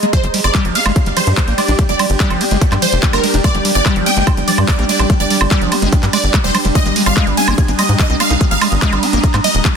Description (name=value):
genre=psychedelic trance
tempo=145 BPM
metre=4/4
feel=straight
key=G phrygian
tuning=A4 = 439 Hz
part: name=liquid acid bass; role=riff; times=0.0-9.7 s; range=F3 to Eb4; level=-20 LUFS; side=moving between left 3 dB and right 5 dB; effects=chorus, auto-pan, vintage 12-bit sampler grit, sidechain pumping, digital delay
part: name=big-room dance drum kit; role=drums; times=0.0-9.7 s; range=handclaps, hi-hat, ride cymbal, woodblock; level=-19 LUFS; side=right 2 dB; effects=overdrive
part: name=ethereal airy pad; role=texture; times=0.0-9.8 s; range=G4 to Eb6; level=-23 LUFS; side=equal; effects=ensemble chorus, built-in reverb, sidechain pumping
part: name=supersaw stab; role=melody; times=0.1-9.6 s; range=Bb4 to Ab5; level=-19 LUFS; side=right 1 dB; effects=phaser, sidechain pumping, digital delay
part: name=evolving wavetable pad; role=sustained chords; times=0.5-9.8 s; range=G3 to D4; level=-21 LUFS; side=equal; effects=chorus, built-in reverb, sidechain pumping
part: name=electronic kick drum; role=drums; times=0.1-9.7 s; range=none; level=-15 LUFS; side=equal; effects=none
part: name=tight sequencer bass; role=bass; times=0.2-9.6 s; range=Eb1 to Ab2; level=-17 LUFS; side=equal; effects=none
room=light reverb, digital ambience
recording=dense, heavily limited modern master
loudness=-11 LUFS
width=side -6 dB against mid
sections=0.0-9.8 A section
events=none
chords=0.1 G5; 6.8 Ab5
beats=| 0.13 0.55 0.96 1.37 | 1.79 2.20 2.62 3.03 | 3.44 3.86 4.27 4.68 | 5.10 5.51 5.92 6.34 | 6.75 7.17 7.58 7.99 | 8.41 8.82 9.24 9.65